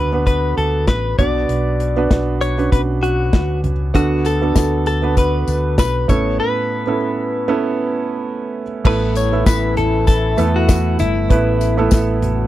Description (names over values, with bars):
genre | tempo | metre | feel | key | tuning
piano-driven pop | 98 BPM | 4/4 | swing 56% on 16ths | unclear | A4 = 440 Hz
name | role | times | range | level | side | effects
direct-recorded clean electric guitar | melody | 0.0-12.2 s | E4 to D5 | -21 LUFS | left 3 dB | wide subtle chorus
warm concert grand piano | accompaniment | 0.0-12.5 s | A2 to B4 | -20 LUFS | right 4 dB | none
fingered electric bass | bass | 0.0-12.5 s | G1 to E2 | -19 LUFS | equal | none
modern studio drum kit | drums | 0.3-12.4 s | crash cymbal, hi-hat, kick drum, snare drum, toms | -16 LUFS | equal | none
tambourine | percussion | 4.0-12.1 s | none | -34 LUFS | left 15 dB | none
mellow French horn section | second line | 8.9-12.5 s | E3 to F#4 | -26 LUFS | left 10 dB | none
room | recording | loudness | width
little or no reverb | dry, close 1970s-style studio recording | -15 LUFS | side -14 dB against mid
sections
0.0-8.9 A section; 8.9-12.5 B section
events
break 6.4-8.9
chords
0.0 D6; 1.2 Bmadd9; 3.9 D6; 6.1 Aadd9; 8.9 Asus2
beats
0.27 0.88 | 1.49 2.11 2.72 3.33 | 3.95 4.56 5.17 5.79 | 6.40 7.01 7.62 8.24 | 8.85 9.46 10.08 10.69 | 11.30 11.91